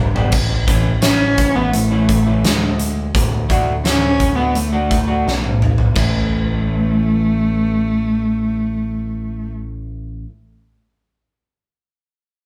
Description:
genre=quiet-loud alternative rock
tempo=85 BPM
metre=4/4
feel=straight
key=A major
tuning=A4 = 442 Hz
part: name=electric guitar through a small old amp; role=arpeggios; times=0.0-10.3 s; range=G2 to G4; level=-26 LUFS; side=equal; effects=none
part: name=growling picked electric bass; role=bass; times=0.0-10.2 s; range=G1 to D2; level=-24 LUFS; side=equal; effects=overdrive
part: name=huge arena drum kit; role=drums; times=0.2-6.1 s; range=crash cymbal, hi-hat, kick drum, snare drum, toms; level=-20 LUFS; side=equal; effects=none
part: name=rich cello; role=melody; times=1.0-9.5 s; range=G#3 to C#4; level=-21 LUFS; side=equal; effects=none
room=light reverb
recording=band playing live in one room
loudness=-17 LUFS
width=mono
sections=0.3-6.0 A section; 6.0-8.8 B section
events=drum fill 0.0-0.3, 5.3-6.0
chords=0.3 A; 3.1 D; 6.0 A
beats=| 0.33 1.03 1.74 2.44 | 3.14 3.85 4.55 5.26 | 5.96 6.67 7.37 8.08

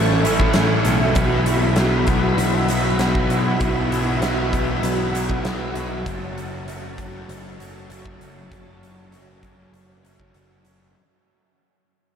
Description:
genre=rock, shoegaze and dream pop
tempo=98 BPM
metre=4/4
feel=straight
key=unclear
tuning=A4 = 442 Hz
part: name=ensemble organ-string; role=sustained chords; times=0.0-10.9 s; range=F#4 to C#6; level=-27 LUFS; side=equal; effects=ensemble chorus
part: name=raw garage guitar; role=riff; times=0.0-10.9 s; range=F#2 to F#4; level=-25 LUFS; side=right 8 dB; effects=overdrive, reverse reverb
part: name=thick fuzz guitar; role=riff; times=0.0-11.0 s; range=F#2 to B3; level=-25 LUFS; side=left 6 dB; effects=distortion, ensemble chorus
part: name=picked electric bass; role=bass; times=0.0-10.9 s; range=F#1 to B1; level=-24 LUFS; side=equal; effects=none
part: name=huge arena drum kit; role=drums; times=0.2-10.8 s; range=hi-hat, kick drum, snare drum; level=-24 LUFS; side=equal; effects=none
room=moderate huge ambient reverb, RT60 6.7 s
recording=dreamy mix soaked in reverb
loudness=-17 LUFS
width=side -8 dB against mid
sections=0.0-11.0 A section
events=fade-out 0.0-11.0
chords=0.0 Amaj7; 1.2 Bsus4; 6.1 F#m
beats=0.55 | 1.16 1.77 2.39 3.00 | 3.61 4.22 4.83 5.44 | 6.06 6.67 7.28 7.89 | 8.51 9.12 9.73 10.35

